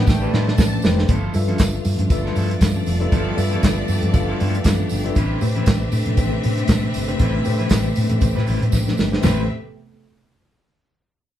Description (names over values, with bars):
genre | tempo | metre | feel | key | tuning
disco | 118 BPM | 4/4 | swing 56% on 16ths | A minor | A4 = 439 Hz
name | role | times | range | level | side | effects
bright trombone | melody | 0.0-0.8 s | A3 to B3 | -29 LUFS | left 1 dB | none
clear studio string section | second line | 0.0-9.5 s | B3 to A5 | -30 LUFS | equal | none
mellow tine electric piano | accompaniment | 0.0-9.5 s | G3 to F5 | -26 LUFS | left 2 dB | fast stereo tremolo
rich studio string section | sustained chords | 0.0-9.5 s | C3 to G4 | -29 LUFS | equal | none
hollow-body short-scale fingered electric bass | bass | 0.0-9.5 s | F1 to A2 | -21 LUFS | equal | none
electric guitar at the edge of break-up | accompaniment | 0.1-9.4 s | F3 to B4 | -33 LUFS | right 2 dB | none
warm soul drum kit | drums | 0.1-9.4 s | handclaps, hi-hat, kick drum, snare drum, toms | -19 LUFS | equal | none
congas | percussion | 0.1-9.5 s | none | -30 LUFS | left 2 dB | none
tambourine | percussion | 0.1-9.5 s | none | -37 LUFS | right 4 dB | none
room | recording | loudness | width
wet studio ambience, RT60 0.5 s | band playing live in one room, lossy compression artefacts | -17 LUFS | side -11 dB against mid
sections
0.0-1.1 A section; 1.1-9.2 B section; 9.2-11.3 C section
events
drum fill 0.0-1.1, 8.7-9.2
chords
0.0 Am9; 1.1 G13; 5.2 Am9